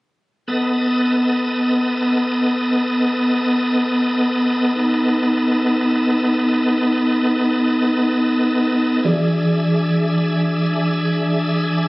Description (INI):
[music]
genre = blues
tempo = free time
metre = none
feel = none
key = unclear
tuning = A4 = 443 Hz
[part]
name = bright tonewheel organ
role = sustained chords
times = 0.5-11.9 s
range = B3 to E5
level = -16 LUFS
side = equal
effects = slow rotary speaker, chorus vibrato
[part]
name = bright tine electric piano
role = accompaniment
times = 9.0-11.9 s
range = E3 to D5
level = -17 LUFS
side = equal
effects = medium stereo tremolo
[sound]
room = moderate studio reverb, RT60 0.6 s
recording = recorded on a phone in the room, studio reverb, compression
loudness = -16 LUFS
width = side -22 dB against mid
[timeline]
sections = 0.5-11.9 A section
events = none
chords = 0.5 B7; 9.1 E7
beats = free time